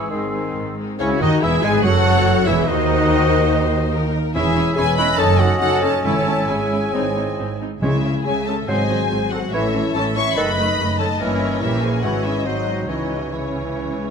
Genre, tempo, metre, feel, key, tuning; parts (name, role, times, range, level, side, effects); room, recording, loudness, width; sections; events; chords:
quick classical-period movement for symphony orchestra; 133-146 BPM; 4/4; rubato; C# minor; A4 = 439 Hz
warm studio violin section; melody; 0.0-14.1 s; G#4 to C#6; -25 LUFS; left 4 dB
clear oboe; second line; 0.0-14.1 s; A4 to B#5; -29 LUFS; right 1 dB
hollow flute section; second line; 0.0-14.1 s; E4 to E6; -27 LUFS; right 3 dB
warm clarinet; second line; 0.0-14.1 s; C#4 to C#5; -27 LUFS; left 2 dB
warm studio violin section; second line; 0.0-14.1 s; B#3 to E5; -28 LUFS; left 7 dB
clear bassoon; accompaniment; 0.0-14.1 s; C#3 to C#4; -26 LUFS; right 2 dB
warm studio viola section; accompaniment; 0.0-14.1 s; D#3 to G#4; -27 LUFS; right 2 dB
mellow French horn section; sustained chords; 0.0-14.1 s; C#3 to D#4; -27 LUFS; left 6 dB
clear trumpet section; stabs; 0.0-0.5 s; G#4; -35 LUFS; left 2 dB
warm studio cello section; bass; 0.0-14.1 s; C#2 to C#3; -26 LUFS; right 4 dB
warm studio double bass section; bass; 0.0-14.1 s; E1 to D#2; -25 LUFS; right 4 dB
timpani; percussion; 6.0-9.3, 12.0-12.4 s; G#2 to C#3; -27 LUFS; left 2 dB
moderate scoring stage reverb, RT60 1.5 s; -16 LUFS; side -6 dB against mid
1.0-14.1 A section
0.1 G#; 1.0 C#m; 2.7 Cdim/Eb; 4.4 C#m/E; 5.2 D#m7b5/F#; 6.0 C#m/G#; 6.9 G#; 7.8 C#m; 8.7 G#7; 9.5 A; 10.4 D#dim/F#; 11.2 Gdim7; 12.0 C#m/G#; 12.4 G#7; 12.9 C#m